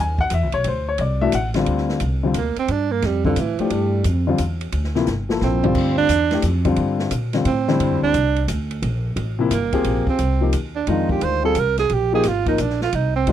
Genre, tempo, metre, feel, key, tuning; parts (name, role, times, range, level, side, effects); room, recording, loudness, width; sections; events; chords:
modal jazz; 176 BPM; 3/4; swing 65% on 8ths; G dorian, F dorian from 9.9 s; A4 = 442 Hz
warm baby grand piano; accompaniment; 0.0-13.3 s; C3 to Ab5; -21 LUFS; left 5 dB
upright bass; bass; 0.0-13.3 s; G1 to Bb2; -22 LUFS; equal
open jazz drum kit; drums; 0.2-13.3 s; crash cymbal, hi-hat, kick drum, ride cymbal, snare drum, toms; -29 LUFS; equal
mellow tenor saxophone; second line; 2.4-13.3 s; D3 to C5; -21 LUFS; right 8 dB
little or no reverb; dry, close 1970s-style studio recording; -18 LUFS; side -11 dB against mid
0.0-1.7 A section; 1.7-9.9 A section; 9.9-13.3 A section
tenor saxophone solo 1.7-13.3; drum fill 5.1-5.8
0.0 Gb9sus4; 0.6 D7; 1.7 Gm9; 9.9 F9sus4